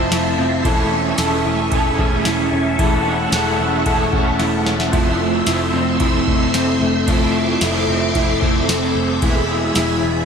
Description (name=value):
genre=dream pop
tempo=112 BPM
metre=4/4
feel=straight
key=unclear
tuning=A4 = 438 Hz
part: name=raw garage guitar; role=accompaniment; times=0.0-10.2 s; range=E3 to G#4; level=-22 LUFS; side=right 4 dB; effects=overdrive, tremolo, analog chorus
part: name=phased string machine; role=sustained chords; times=0.0-10.2 s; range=F3 to E6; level=-21 LUFS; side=equal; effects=ensemble chorus, phaser
part: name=electric guitar through a small old amp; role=arpeggios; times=0.0-10.2 s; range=E3 to A4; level=-21 LUFS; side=left 3 dB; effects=ensemble chorus, digital delay
part: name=vintage muted picked electric bass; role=bass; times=0.0-10.2 s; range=E1 to F1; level=-24 LUFS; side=equal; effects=none
part: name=booming analog drum machine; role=drums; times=0.1-9.9 s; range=kick drum, ride cymbal, snare drum, tambourine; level=-21 LUFS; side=equal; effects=gated reverb
room=moderate plate reverb, RT60 2.2 s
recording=bright 1980s-style digital production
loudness=-15 LUFS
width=side -6 dB against mid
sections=0.0-10.2 A section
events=drum fill 4.4-4.9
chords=0.0 Fmaj7; 0.6 Amaj7/E; 4.9 Fmaj7; 9.2 E